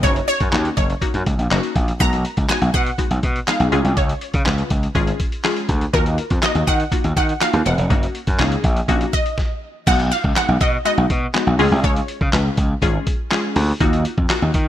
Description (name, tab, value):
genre	dance-pop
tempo	122 BPM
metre	4/4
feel	straight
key	F# major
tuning	A4 = 441 Hz
part	wide unison pluck	melody	0.0-12.8 s	A#4 to A#5	-23 LUFS	right 1 dB	wide subtle chorus
part	wavetable chord stab	accompaniment	0.0-14.6 s	G#3 to B4	-23 LUFS	left 2 dB	sidechain pumping
part	gritty slap bass	bass	0.0-14.7 s	E1 to D#3	-19 LUFS	equal	overdrive, sidechain pumping
part	lo-fi sampler-style drum kit	drums	0.0-14.7 s	crash cymbal, handclaps, hi-hat, kick drum, snare drum	-21 LUFS	equal	none
room	digital ambience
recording	rough home demo mix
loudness	-16 LUFS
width	side -12 dB against mid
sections	0.0-9.9 A section; 9.9-14.7 B section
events	stop 9.4-9.9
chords	0.0 F#6; 2.0 B6; 3.7 C#; 5.9 D#madd9; 7.9 F#6; 9.9 B6; 11.6 C#; 13.8 D#madd9